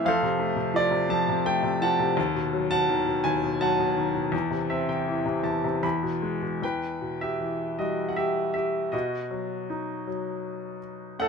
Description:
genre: classical, lyrical solo piano.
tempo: 76-87 BPM.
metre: 3/4.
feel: rubato.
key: E harmonic minor from 6.6 s.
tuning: A4 = 440 Hz.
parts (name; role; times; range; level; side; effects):
bright grand piano; solo; 0.0-11.3 s; D#2 to B5; -24 LUFS; left 1 dB; none.
room: light reverb.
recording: none.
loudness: -24 LUFS.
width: side -5 dB against mid.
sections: 0.0-6.6 A section; 6.6-11.3 B section.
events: grand piano fill 4.3-6.6.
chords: 0.1 F; 2.2 B7/D#; 4.3 Am/E; 5.8 E; 6.6 Em; 8.9 B.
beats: | 0.06 0.76 1.46 | 2.17 2.88 3.60 | 4.33 5.07 5.84 | 6.62 7.41 8.17 | 8.93 9.70 10.46 | 11.20.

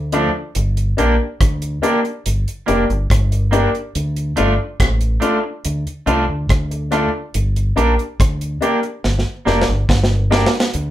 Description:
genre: roots reggae.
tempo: 71 BPM.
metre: 4/4.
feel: straight.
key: unclear.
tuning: A4 = 441 Hz.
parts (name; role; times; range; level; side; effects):
deep dub fingered electric bass; bass; 0.0-10.9 s; F1 to D2; -19 LUFS; equal; none.
electric guitar at the edge of break-up; accompaniment; 0.1-10.5 s; F3 to G4; -20 LUFS; right 2 dB; none.
warm upright piano; stabs; 0.1-10.5 s; D4 to D5; -20 LUFS; left 3 dB; none.
deep reggae drum kit; drums; 0.1-10.9 s; hi-hat, kick drum, rim click, snare drum; -18 LUFS; equal; none.
room: wet studio ambience, RT60 0.5 s.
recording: band playing live in one room.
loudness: -15 LUFS.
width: side -13 dB against mid.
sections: 0.0-10.9 A section.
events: drum fill 9.0-10.7.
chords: 0.0 Dm; 0.6 Gm; 4.0 Dm; 7.3 Gm.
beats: | 0.56 1.41 2.25 3.10 | 3.95 4.80 5.65 6.50 | 7.34 8.19 9.04 9.89 | 10.74.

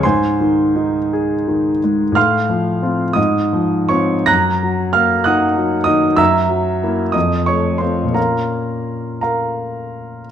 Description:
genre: classical, romantic character piece for solo piano.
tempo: 52-65 BPM (dotted quarters).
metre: 6/8.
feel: rubato.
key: Bb minor.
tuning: A4 = 440 Hz.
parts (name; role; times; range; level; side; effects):
clear grand piano; solo; 0.0-10.3 s; F2 to Bb6; -14 LUFS; equal; none.
room: moderate large studio reverb, RT60 1.3 s.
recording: dark, warm production.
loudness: -14 LUFS.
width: side -9 dB against mid.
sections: 0.0-10.3 A section.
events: none.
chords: 0.0 Ab; 2.2 F/A; 3.2 Fm/Ab; 4.3 Ebm/Gb; 6.2 Gb7; 7.1 F; 8.2 Bbm.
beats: | 0.03 1.11 | 2.15 3.17 | 4.28 5.26 | 6.19 7.15 | 8.16 9.23 | 10.31.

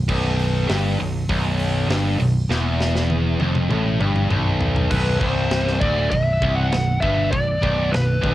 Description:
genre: heavy metal.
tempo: 100 BPM.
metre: 4/4.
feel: straight.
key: B phrygian.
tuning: A4 = 440 Hz.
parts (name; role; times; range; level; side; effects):
heavy high-gain guitar; riff; 0.0-8.3 s; B1 to A2; -24 LUFS; right 5 dB; distortion, cassette tape.
tight distorted guitar; riff; 0.0-8.3 s; B1 to A2; -26 LUFS; left 7 dB; distortion, cassette tape.
picked electric bass; bass; 0.0-8.3 s; B0 to A1; -22 LUFS; equal; none.
tight metal drum kit; drums; 0.1-8.3 s; crash cymbal, hi-hat, kick drum, snare drum, toms; -26 LUFS; equal; none.
high-gain lead guitar; melody; 4.9-8.3 s; B4 to F#5; -23 LUFS; equal; distortion.
room: little or no reverb.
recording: home recording on cassette.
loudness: -18 LUFS.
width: side -14 dB against mid.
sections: 0.0-4.9 A section; 4.9-8.3 B section.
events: drum fill 2.5-4.9.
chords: 0.0 N.C.; 4.9 Bm.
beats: | 0.09 0.69 1.29 1.90 | 2.50 3.10 3.70 4.31 | 4.91 5.51 6.12 6.72 | 7.32 7.92.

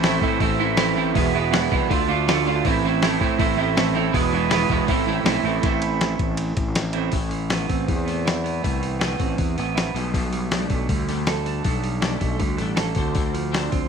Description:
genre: indie rock.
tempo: 160 BPM.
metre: 4/4.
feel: straight.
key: A harmonic minor, A minor from 7.1 s.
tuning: A4 = 440 Hz.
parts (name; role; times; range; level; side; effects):
raw garage guitar; riff; 0.0-13.9 s; E2 to A4; -23 LUFS; right 14 dB; overdrive, lush chorus, slapback echo.
twelve-string electric guitar; riff; 0.0-13.9 s; A2 to F4; -31 LUFS; left 14 dB; ensemble chorus.
fuzz fingered electric bass; bass; 0.0-13.9 s; E1 to A2; -26 LUFS; left 2 dB; overdrive.
dusty soul sampler-style drum kit; drums; 0.0-13.8 s; hi-hat, kick drum, ride cymbal, snare drum; -24 LUFS; left 2 dB; none.
room: light reverb.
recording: 1960s-style stereo with parts hard left and right.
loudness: -19 LUFS.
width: side -6 dB against mid.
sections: 0.0-5.6 A section; 5.6-7.1 B section; 7.1-13.9 C section.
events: none.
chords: 0.0 Am; 1.1 E; 1.9 Dm; 2.6 Am; 4.1 E; 4.9 Am; 7.1 Amadd9; 10.0 Gadd9/B; 13.0 Dm7.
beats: 0.03 0.40 0.78 | 1.15 1.52 1.90 2.27 | 2.64 3.02 3.39 3.76 | 4.13 4.51 4.88 5.26 | 5.63 6.00 6.38 6.76 | 7.13 7.51 7.88 8.26 | 8.63 9.01 9.39 9.76 | 10.14 10.52 10.89 11.27 | 11.65 12.02 12.40 12.78 | 13.15 13.53.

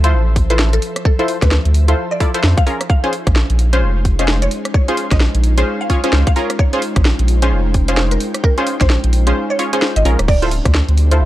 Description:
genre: UK garage, two-step garage.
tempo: 130 BPM.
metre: 4/4.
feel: swing 61% on 16ths.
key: unclear.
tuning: A4 = 440 Hz.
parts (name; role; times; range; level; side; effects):
ethereal airy pad; sustained chords; 0.0-11.3 s; F3 to G5; -29 LUFS; left 1 dB; ensemble chorus, built-in reverb, sidechain pumping.
punchy chord stab; stabs; 0.0-11.3 s; Db4 to D5; -20 LUFS; equal; chorus, tape echo.
soft dub sub bass; bass; 0.0-11.3 s; D1 to F2; -14 LUFS; equal; none.
garage drum kit; drums; 0.0-11.2 s; crash cymbal, hi-hat, rim click, snare drum; -21 LUFS; equal; overdrive.
electronic kick drum; drums; 0.4-10.7 s; none; -14 LUFS; equal; overdrive.
mallet-like synth pluck; melody; 0.5-10.5 s; A4 to F5; -24 LUFS; equal; ensemble chorus, tape echo.
airy breathy pad; texture; 2.7-11.3 s; Ab3 to G4; -27 LUFS; left 1 dB; chorus, sidechain pumping.
room: digital ambience.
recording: dry, gritty hardware recording, cassette tape.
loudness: -13 LUFS.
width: side -15 dB against mid.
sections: 0.0-11.3 A section.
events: kick drops out 9.4-10.3.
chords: 0.0 Dm7; 2.7 Bbm7; 10.3 Dm7.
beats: 0.13 0.59 | 1.05 1.51 1.98 2.44 | 2.90 3.36 3.82 4.28 | 4.74 5.21 5.67 6.13 | 6.59 7.05 7.51 7.97 | 8.44 8.90 9.36 9.82 | 10.28 10.74 11.21.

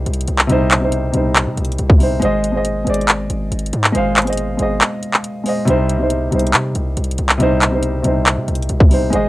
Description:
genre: hip hop, trap.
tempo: 139 BPM.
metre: 4/4.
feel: half-time.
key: C minor.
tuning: A4 = 440 Hz.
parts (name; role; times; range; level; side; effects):
dark baby grand piano; accompaniment; 0.0-9.3 s; C3 to F5; -18 LUFS; equal; low-pass filter, cassette tape.
hard-hitting 808-style bass; bass; 0.0-9.3 s; Ab1 to C3; -20 LUFS; equal; none.
trap drum kit; drums; 0.1-9.2 s; handclaps, hi-hat, kick drum; -14 LUFS; equal; cassette tape.
room: little or no reverb.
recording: home recording on cassette.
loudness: -14 LUFS.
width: side -17 dB against mid.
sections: 0.0-9.3 A section.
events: kick muted 4.8-5.7.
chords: 0.0 Cm; 2.2 Ab; 5.7 Cm.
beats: 0.06 | 0.49 0.93 1.36 1.79 | 2.22 2.65 3.08 3.52 | 3.95 4.38 4.81 5.24 | 5.67 6.11 6.54 6.97 | 7.40 7.83 8.27 8.70 | 9.13.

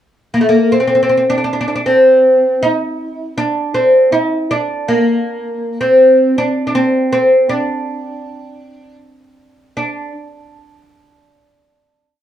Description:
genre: Persian modal ensemble.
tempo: 80 BPM.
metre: 3/4.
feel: straight.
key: unclear.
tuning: A4 = 440 Hz.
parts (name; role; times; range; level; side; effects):
oud; solo; 0.3-10.1 s; A3 to Eb4+45c; -11 LUFS; equal; none.
room: moderate studio reverb, RT60 0.5 s.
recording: worn, warbling old tape, cassette tape, warbly pitch drift.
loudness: -11 LUFS.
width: side -10 dB against mid.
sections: 0.0-0.7 pickup bar; 0.7-9.8 A section; 9.8-12.0 final note.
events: none.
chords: none.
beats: | 0.71 1.46 2.22 | 2.98 3.73 4.49 | 5.24 6.00 6.75 | 7.51 8.26 9.01 | 9.77.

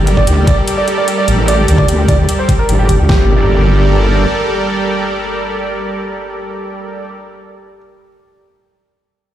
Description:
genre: heavy wobble dubstep.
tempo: 149 BPM.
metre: 4/4.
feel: half-time.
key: G minor.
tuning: A4 = 438 Hz.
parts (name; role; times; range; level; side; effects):
clear baby grand piano; melody; 0.0-7.8 s; G4 to D5; -20 LUFS; right 2 dB; ping-pong delay.
supersaw pad; sustained chords; 0.0-7.1 s; G3 to D5; -17 LUFS; right 1 dB; sidechain pumping.
wobble bass; bass; 0.0-4.3 s; G1 to D2; -12 LUFS; equal; chorus, overdrive.
electronic hi-hat; drums; 0.1-3.0 s; none; -24 LUFS; left 2 dB; none.
dubstep drum kit; drums; 0.2-3.2 s; kick drum, snare drum; -13 LUFS; equal; overdrive.
impact; sound effects; 3.1-7.8 s; none; -21 LUFS; equal; none.
room: light reverb.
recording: played on a big sound system in a bare room, stone room reverb.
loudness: -10 LUFS.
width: side -11 dB against mid.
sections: 0.0-3.1 A section; 3.1-6.3 B section.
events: filter sweep on wobble bass 0.0-3.1.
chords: 0.0 Gmadd9.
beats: 0.27 0.68 1.08 | 1.48 1.88 2.29 2.69 | 3.09 3.49 3.90 4.30 | 4.70 5.10 5.51 5.91.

